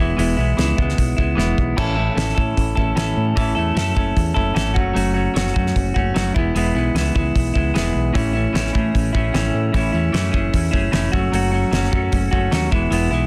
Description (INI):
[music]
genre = indie rock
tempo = 151 BPM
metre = 4/4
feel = straight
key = unclear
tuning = A4 = 440 Hz
[part]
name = overdriven electric guitar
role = riff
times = 0.0-13.3 s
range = A2 to A4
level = -23 LUFS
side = equal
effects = none
[part]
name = growling fingered electric bass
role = bass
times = 0.0-13.3 s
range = E1 to A2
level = -24 LUFS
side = equal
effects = overdrive
[part]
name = cloth-damped thuddy drum kit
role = drums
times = 0.2-13.0 s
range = crash cymbal, hi-hat, kick drum, snare drum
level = -24 LUFS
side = equal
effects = none
[part]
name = twelve-string electric guitar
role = riff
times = 8.1-13.3 s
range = E2 to A4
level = -36 LUFS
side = equal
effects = none
[sound]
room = small room ambience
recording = dense, heavily limited modern master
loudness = -19 LUFS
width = mono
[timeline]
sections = 0.0-1.8 A section; 1.8-13.3 A section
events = drum fill 1.4-1.8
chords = 0.0 E; 1.8 A; 4.8 F#m; 6.4 E; 8.1 Amaj7; 11.1 F#m; 12.7 E